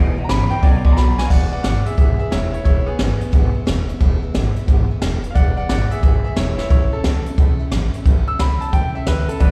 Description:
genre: rockabilly.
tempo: 178 BPM.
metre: 4/4.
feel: swing 65% on 8ths.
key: E mixolydian.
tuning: A4 = 438 Hz.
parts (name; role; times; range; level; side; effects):
picked steel-string acoustic guitar; accompaniment; 0.0-9.5 s; E2 to F#4; -32 LUFS; equal; slapback echo.
twangy electric guitar; riff; 0.0-1.3, 9.4-9.5 s; E2 to G#3; -27 LUFS; equal; ensemble chorus, slapback echo.
upright bass; bass; 0.0-9.5 s; E1 to D2; -22 LUFS; equal; none.
bright upright piano; melody; 0.2-9.5 s; B3 to E6; -27 LUFS; equal; slapback echo.
jazz brush drum kit; drums; 0.3-9.5 s; crash cymbal, hi-hat, kick drum, snare drum; -20 LUFS; equal; none.
room: studio ambience.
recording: live gig heard through the venue's PA, recital hall reverb, faint mains hum.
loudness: -17 LUFS.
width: mono.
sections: 0.0-1.3 A section; 1.3-9.5 B section.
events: upright piano solo 0.0-1.3; drum fill 1.0-1.3, 6.5.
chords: 0.0 E; 0.6 B; 1.3 E; 6.7 A.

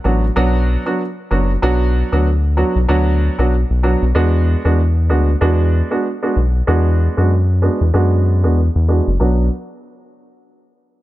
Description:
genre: afrobeats.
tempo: 95 BPM.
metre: 4/4.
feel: swing 58% on 16ths.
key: B dorian.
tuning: A4 = 437 Hz.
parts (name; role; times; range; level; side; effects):
warm baby grand piano; accompaniment; 0.0-9.4 s; F#3 to F#4; -18 LUFS; right 2 dB; low-pass filter.
round analog bass; bass; 0.0-9.5 s; F#1 to F#2; -14 LUFS; equal; none.
room: studio ambience.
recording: none.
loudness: -13 LUFS.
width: side -16 dB against mid.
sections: 0.0-9.2 A section; 9.2-11.0 B section.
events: filter sweep on grand piano 0.0-9.2.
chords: 0.0 Bm; 4.2 E7; 9.2 Bm.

